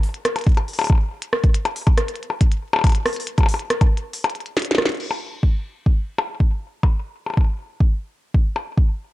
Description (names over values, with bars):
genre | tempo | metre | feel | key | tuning
IDM | 139 BPM | 4/4 | straight | none | none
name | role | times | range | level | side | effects
glitchy drum kit | drums | 0.0-8.6 s | crash cymbal, hi-hat, percussion blips, rim click, snare drum | -22 LUFS | left 2 dB | tape echo
electronic kick drum | drums | 0.5-8.9 s | none | -16 LUFS | equal | none
room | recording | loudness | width
little or no reverb | dark, warm production | -18 LUFS | side -17 dB against mid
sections
0.0-5.0 A section; 5.0-9.1 B section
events
break 4.1-5.0; drum fill 4.6-5.0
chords
none